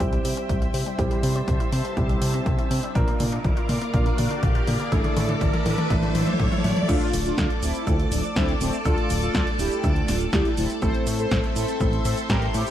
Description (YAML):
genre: italo disco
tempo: 122 BPM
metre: 4/4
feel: straight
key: D minor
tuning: A4 = 441 Hz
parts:
  - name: string machine, full ensemble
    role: sustained chords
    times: 0.0-12.7 s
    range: A4 to E6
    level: -31 LUFS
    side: equal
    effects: ensemble chorus
  - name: wide unison pluck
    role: arpeggios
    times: 0.0-6.8 s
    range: C3 to F4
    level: -33 LUFS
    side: left 3 dB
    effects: digital delay
  - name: dark concert grand piano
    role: stabs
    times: 0.0-12.7 s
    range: G3 to Bb4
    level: -30 LUFS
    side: right 2 dB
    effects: digital delay
  - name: fat analog bass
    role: bass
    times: 0.0-12.6 s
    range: D1 to C3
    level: -26 LUFS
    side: equal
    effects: none
  - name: electronic kick drum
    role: drums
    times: 0.0-12.4 s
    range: none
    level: -26 LUFS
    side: equal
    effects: none
  - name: house drum kit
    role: drums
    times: 0.0-12.7 s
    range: cabasa, crash cymbal, hi-hat, snare drum, toms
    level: -28 LUFS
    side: equal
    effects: none
  - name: riser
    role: sound effects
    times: 0.7-6.9 s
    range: none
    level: -34 LUFS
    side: right 1 dB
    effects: none
  - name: mellow synth brass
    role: melody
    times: 6.9-12.7 s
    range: F3 to C5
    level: -28 LUFS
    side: left 1 dB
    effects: chorus, phaser, digital delay
room: light reverb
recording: dark, warm production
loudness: -20 LUFS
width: side -11 dB against mid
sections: 0.0-6.9 A section; 6.9-12.7 B section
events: drum fill 0.0-6.9; filter sweep on synth arpeggio sound 0.0-6.9; filter sweep on string machine 0.0-6.9; riser 0.7-6.9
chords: 0.0 C; 3.0 Bb; 4.9 Asus4; 6.9 Dm; 10.8 Am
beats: 0.00 0.49 | 0.99 1.48 1.97 2.46 | 2.95 3.44 3.94 4.43 | 4.92 5.41 5.90 6.40 | 6.89 7.38 7.87 8.36 | 8.86 9.35 9.84 10.33 | 10.82 11.31 11.81 12.30